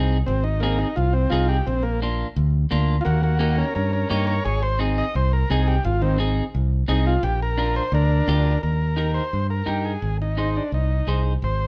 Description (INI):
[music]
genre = latin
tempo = 172 BPM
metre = 4/4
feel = straight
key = Eb major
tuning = A4 = 440 Hz
[part]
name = electric guitar at the edge of break-up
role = accompaniment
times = 0.0-11.3 s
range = Bb3 to C5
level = -29 LUFS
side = equal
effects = none
[part]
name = fingered electric bass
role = bass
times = 0.0-11.7 s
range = Ab1 to G2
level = -24 LUFS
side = equal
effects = none
[part]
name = combo organ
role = melody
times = 0.3-11.7 s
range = Eb3 to Eb5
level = -28 LUFS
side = equal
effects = none
[sound]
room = moderate stone room reverb, RT60 1.0 s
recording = band playing live in one room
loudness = -22 LUFS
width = mono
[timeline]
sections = 0.0-8.6 A section; 8.6-11.7 B section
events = transistor combo organ solo 0.0-8.6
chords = 0.0 Ab; 1.7 Bb; 3.1 Eb; 4.5 Ab; 7.2 Bb; 8.6 Eb; 10.0 Ab